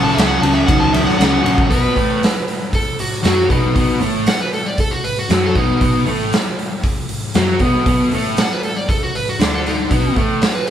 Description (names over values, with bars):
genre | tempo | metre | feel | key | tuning
blues rock power trio and southern rock | 117 BPM | 4/4 | straight | B mixolydian | A4 = 440 Hz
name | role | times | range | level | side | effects
overdriven slide guitar | melody | 0.0-10.7 s | D#4 to A5 | -21 LUFS | equal | none
overdriven electric guitar | riff | 0.0-10.4 s | F#2 to F#4 | -16 LUFS | left 1 dB | none
vintage muted picked electric bass | bass | 0.0-10.4 s | A1 to F#2 | -22 LUFS | right 1 dB | none
raw garage drum kit | drums | 0.1-10.7 s | hi-hat, kick drum, ride cymbal, snare drum | -18 LUFS | equal | none
room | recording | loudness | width
moderate studio reverb, RT60 0.6 s | band playing live in one room | -14 LUFS | side -10 dB against mid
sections
0.0-1.7 A section; 1.7-10.7 B section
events
electric slide guitar solo 0.0-1.7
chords
0.0 F#; 1.7 B5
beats
0.17 0.68 1.19 | 1.71 2.22 2.73 3.25 | 3.76 4.27 4.79 5.30 | 5.81 6.33 6.84 7.35 | 7.86 8.37 8.88 9.40 | 9.91 10.42